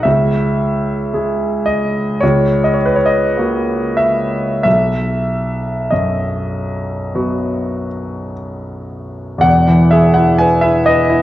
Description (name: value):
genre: classical, romantic nocturne for solo piano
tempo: 45-64 BPM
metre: 4/4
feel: rubato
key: E major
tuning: A4 = 443 Hz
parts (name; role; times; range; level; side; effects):
- clear grand piano; solo; 0.0-11.2 s; E1 to G#5; -13 LUFS; equal; none
room: wet recital hall reverb, RT60 1.7 s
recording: worn, warbling old tape, cassette tape, warbly pitch drift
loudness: -13 LUFS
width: side -14 dB against mid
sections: 0.0-9.4 A section; 9.4-11.2 B section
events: none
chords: 0.0 C#m; 2.2 F#/C#; 4.6 B; 9.4 E